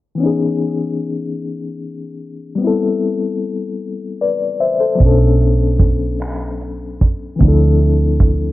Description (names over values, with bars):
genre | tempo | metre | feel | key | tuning
slow six-eight R&B | 50 BPM (dotted quarters) | 6/8 | straight | C# phrygian | A4 = 438 Hz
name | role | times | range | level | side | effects
reed electric piano | accompaniment | 0.1-8.5 s | E3 to E5 | -18 LUFS | left 4 dB | fast tremolo, cassette tape
vintage muted fingered electric bass | bass | 5.0-8.5 s | B1 to D2 | -14 LUFS | right 1 dB | none
damped 70s drum kit | drums | 5.0-8.4 s | finger snaps, hi-hat, kick drum | -14 LUFS | right 1 dB | cassette tape
room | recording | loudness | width
studio reverb | home recording on cassette, low-pass filter | -14 LUFS | side -16 dB against mid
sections
0.2-8.5 A section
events
filter sweep 0.2-8.5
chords
0.2 C#m9; 2.6 Am9; 5.0 Bm9; 7.4 Dm9